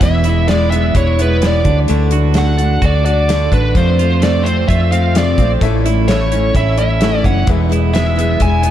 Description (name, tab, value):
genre	folk rock and heartland rock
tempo	129 BPM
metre	4/4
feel	straight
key	unclear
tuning	A4 = 439 Hz
part	bluesy overdriven lead guitar	melody	0.0-8.7 s	B4 to G#5	-18 LUFS	equal	distortion, ping-pong delay
part	picked steel-string acoustic guitar	accompaniment	0.0-8.7 s	E2 to F#4	-20 LUFS	left 4 dB	none
part	twelve-string electric guitar	riff	0.0-8.7 s	E2 to F#4	-21 LUFS	right 10 dB	none
part	hollow-body short-scale fingered electric bass	bass	0.0-8.7 s	E1 to F2	-15 LUFS	equal	none
part	damped 70s drum kit	drums	0.0-8.7 s	hi-hat, kick drum, snare drum	-19 LUFS	equal	none
part	warm baby grand piano	accompaniment	5.6-8.7 s	G#4 to F#5	-26 LUFS	left 6 dB	lush chorus
room	moderate cathedral reverb, RT60 4.9 s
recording	dreamy mix soaked in reverb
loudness	-11 LUFS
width	side -11 dB against mid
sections	0.0-8.7 A section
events	none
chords	0.0 E; 1.7 D; 3.8 F; 5.6 A; 7.5 E